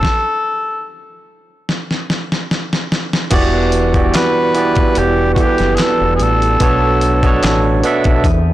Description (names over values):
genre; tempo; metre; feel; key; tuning
R&B, neo-soul; 73 BPM; 4/4; swing 53% on 16ths; E minor from 3.3 s; A4 = 439 Hz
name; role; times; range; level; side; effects
mellow cor anglais; melody; 0.0-7.9 s; F#4 to B4; -17 LUFS; left 1 dB; slapback echo
barky tine electric piano; accompaniment; 0.0-8.3 s; B2 to F#5; -15 LUFS; right 3 dB; overdrive
dusty soul sampler-style drum kit; drums; 0.0-8.4 s; crash cymbal, handclaps, hi-hat, kick drum, snare drum; -17 LUFS; left 1 dB; none
percussive tonewheel organ; sustained chords; 3.3-8.5 s; E3 to F#5; -28 LUFS; left 1 dB; none
deep dub fingered electric bass; bass; 3.3-8.5 s; E1 to E2; -17 LUFS; left 1 dB; transformer saturation
room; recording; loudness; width
light reverb, digital ambience; blown-out, overdriven recording, overdrive; -12 LUFS; side -14 dB against mid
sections
0.0-3.3 A section; 3.3-8.5 B section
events
stop 0.0-3.3; drum fill 1.7-3.3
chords
0.0 N.C.; 3.3 Em9; 6.6 Bm9